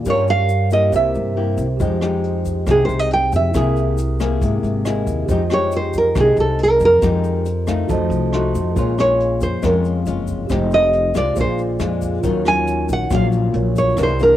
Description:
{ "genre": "bossa nova", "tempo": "138 BPM", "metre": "4/4", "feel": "straight", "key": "F minor, Bb minor from 8.8 s", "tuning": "A4 = 440 Hz", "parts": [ { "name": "mellow tine electric piano", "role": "accompaniment", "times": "0.0-14.4 s", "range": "E4 to D#6", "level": "-26 LUFS", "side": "right 8 dB", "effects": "cassette tape" }, { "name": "nylon-string guitar", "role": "accompaniment", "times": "0.0-14.4 s", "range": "F2 to Bb4", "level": "-23 LUFS", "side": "left 7 dB", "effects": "cassette tape" }, { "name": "upright bass", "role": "bass", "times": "0.0-14.4 s", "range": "F1 to G2", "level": "-21 LUFS", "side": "equal", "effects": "none" }, { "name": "nylon-string guitar", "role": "melody", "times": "0.1-14.4 s", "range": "Ab4 to Ab5", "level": "-16 LUFS", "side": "right 2 dB", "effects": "cassette tape" }, { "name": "egg shaker", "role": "percussion", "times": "0.1-14.4 s", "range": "none", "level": "-45 LUFS", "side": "left 9 dB", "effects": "none" }, { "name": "jazz brush drum kit", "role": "drums", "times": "1.8-14.3 s", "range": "hi-hat, kick drum, rim click", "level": "-26 LUFS", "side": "equal", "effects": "none" } ], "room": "light reverb, small room reverb", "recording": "home recording on cassette", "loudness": "-15 LUFS", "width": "side -12 dB against mid", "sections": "0.0-8.8 A section; 8.8-14.4 A section", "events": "nylon-string guitar solo 0.0-14.4; tine electric piano fill 4.6-5.3, 7.5-8.8", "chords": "0.1 Gm7b5; 0.9 C7; 1.8 Fm9; 3.5 C7alt; 5.3 Fm9; 7.9 F7b9; 8.8 Bbm7; 10.5 Fm9; 11.4 Bb7; 12.2 Ebm9" }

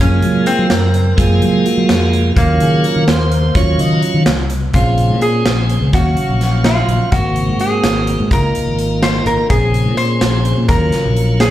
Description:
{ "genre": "progressive instrumental, band music in an uneven meter", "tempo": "252 BPM (eighths)", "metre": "5/8", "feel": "straight", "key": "Eb dorian", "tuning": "A4 = 440 Hz", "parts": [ { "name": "metal-body resonator slide guitar", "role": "second line", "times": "0.0-11.5 s", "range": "Bb3 to C5", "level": "-19 LUFS", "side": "equal", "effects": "slapback echo" }, { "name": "tonewheel organ", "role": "accompaniment", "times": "0.0-11.5 s", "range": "Gb3 to F5", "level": "-19 LUFS", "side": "right 1 dB", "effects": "overdrive, slow rotary speaker, slapback echo" }, { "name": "fingered electric bass", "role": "bass", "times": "0.0-11.5 s", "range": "Ab1 to Gb3", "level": "-15 LUFS", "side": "equal", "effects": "none" }, { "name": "big rock drum kit", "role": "drums", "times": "0.2-11.5 s", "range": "hi-hat, kick drum, snare drum", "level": "-18 LUFS", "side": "equal", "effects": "none" } ], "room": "light reverb, small room ambience", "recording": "live gig heard through the venue's PA, club reverb", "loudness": "-12 LUFS", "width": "side -13 dB against mid", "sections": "0.0-4.7 A section; 4.7-11.5 B section", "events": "tonewheel organ solo 0.0-4.7", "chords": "0.0 Gbmaj7; 2.4 Ebm7; 4.7 Bbm9; 5.9 Ebm9; 7.1 Ab7; 8.3 Db6; 9.5 Bbm9; 10.7 Ebm9" }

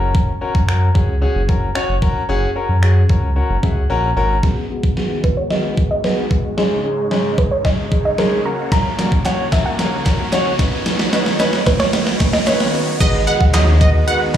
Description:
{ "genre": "dance-pop", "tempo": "112 BPM", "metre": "4/4", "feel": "straight", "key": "G# minor", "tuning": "A4 = 438 Hz", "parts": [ { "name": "clear baby grand piano", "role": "accompaniment", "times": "0.0-14.4 s", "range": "G#3 to A#5", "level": "-21 LUFS", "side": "left 1 dB", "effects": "sidechain pumping, low-pass filter, plate reverb, slapback echo" }, { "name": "round analog bass", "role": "bass", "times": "0.0-4.4, 13.0-14.4 s", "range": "F#1 to F#2", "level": "-16 LUFS", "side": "equal", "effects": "sidechain pumping" }, { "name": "gated 80s digital drum machine", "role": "drums", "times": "0.1-14.4 s", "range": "crash cymbal, finger snaps, handclaps, hi-hat, kick drum, snare drum", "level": "-17 LUFS", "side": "equal", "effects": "gated reverb, gated reverb snare, overdrive" }, { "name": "supersaw chords", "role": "sustained chords", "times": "4.4-14.4 s", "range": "G#2 to C#5", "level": "-26 LUFS", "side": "right 2 dB", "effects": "sidechain pumping, low-pass filter" }, { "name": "riser", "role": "sound effects", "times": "6.4-13.0 s", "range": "none", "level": "-32 LUFS", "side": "right 1 dB", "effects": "none" }, { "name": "soft round pluck", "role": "melody", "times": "5.2-12.8 s", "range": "A#4 to A#5", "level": "-22 LUFS", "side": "right 2 dB", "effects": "chorus, low-pass filter, plate reverb, slapback echo, digital delay" }, { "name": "group handclap", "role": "percussion", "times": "9.3-14.4 s", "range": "none", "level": "-34 LUFS", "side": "right 5 dB", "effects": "none" }, { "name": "wide unison pluck", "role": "melody", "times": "13.0-14.2 s", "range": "D#5 to F#5", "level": "-18 LUFS", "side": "right 4 dB", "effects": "phaser, sidechain pumping, plate reverb, slapback echo, digital delay" } ], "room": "light reverb", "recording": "live gig heard through the venue's PA, club reverb", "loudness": "-14 LUFS", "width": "side -10 dB against mid", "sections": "0.0-4.4 A section; 4.4-13.0 B section; 13.0-14.4 C section", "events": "grand piano fill 3.4-4.4; silent gap 3.9-4.4; build-up 4.4-13.0; drum fill 4.4-13.0; filter sweep 4.4-13.0; riser 6.4-13.0; drop 13.0-14.4", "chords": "0.0 F#; 4.4 G#m7; 6.6 C#sus2/G#; 8.5 F#; 10.6 Badd9; 13.0 G#m7" }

